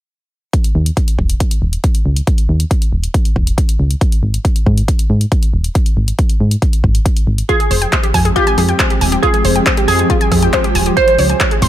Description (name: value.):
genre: uplifting trance.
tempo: 138 BPM.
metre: 4/4.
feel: straight.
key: unclear.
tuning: A4 = 443 Hz.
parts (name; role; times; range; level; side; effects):
electronic kick drum; drums; 0.5-11.7 s; none; -14 LUFS; equal; none.
punchy analog drum machine; drums; 0.5-11.7 s; handclaps, hi-hat; -20 LUFS; left 1 dB; overdrive, sidechain pumping on hats.
solid FM bass; bass; 0.8-11.7 s; Eb1 to Ab2; -15 LUFS; equal; sidechain pumping.
glassy wavetable pluck; second line; 7.5-11.7 s; G4 to C5; -16 LUFS; right 2 dB; chorus, dub echo.
wide unison pluck; arpeggios; 7.5-11.7 s; F4 to C6; -18 LUFS; left 1 dB; auto-pan, sidechain pumping, dub echo.
room: digital ambience.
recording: none.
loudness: -11 LUFS.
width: side -13 dB against mid.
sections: 0.5-11.7 A section.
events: none.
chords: 0.5 Dbsus2/Eb; 4.0 Ab5; 7.5 Fmadd9; 11.0 Dbmaj7.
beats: | 0.53 0.97 1.40 1.84 | 2.27 2.71 3.14 3.58 | 4.01 4.45 4.88 5.32 | 5.75 6.19 6.62 7.06 | 7.49 7.93 8.36 8.79 | 9.23 9.66 10.10 10.53 | 10.97 11.40.